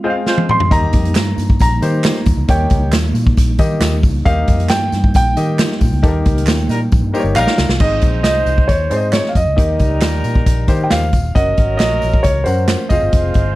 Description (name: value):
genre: uptempo 1960s-style soul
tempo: 135 BPM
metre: 4/4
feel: straight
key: unclear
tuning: A4 = 440 Hz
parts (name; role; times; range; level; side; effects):
- warm concert grand piano; melody; 0.0-13.5 s; C5 to C6; -19 LUFS; right 1 dB; none
- warm horn section; second line; 0.0-0.6, 6.7-13.6 s; Gb3 to C5; -24 LUFS; right 1 dB; none
- clear baby grand piano; accompaniment; 0.0-13.6 s; Ab2 to Gb5; -22 LUFS; left 3 dB; none
- mellow tonewheel organ; sustained chords; 0.0-7.8 s; G3 to F4; -24 LUFS; right 3 dB; fast rotary speaker, chorus vibrato
- swinging big-band drum kit; drums; 0.3-13.5 s; crash cymbal, hi-hat, kick drum, snare drum, toms; -15 LUFS; equal; none
- vintage muted fingered electric bass; bass; 0.7-13.5 s; Eb1 to Eb3; -18 LUFS; equal; none
- handclaps and tambourine; percussion; 1.2-13.5 s; none; -30 LUFS; right 3 dB; none
room: light reverb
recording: dark, warm production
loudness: -12 LUFS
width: side -17 dB against mid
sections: 0.0-7.8 A section; 7.8-13.6 B section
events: band accent 0.0-0.7, 6.0-7.8; drum fill 0.3-0.7, 6.9-7.8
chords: 0.0 Fm; 0.7 Eb; 7.8 Ab; 9.6 Eb; 11.4 Gb; 12.9 Fm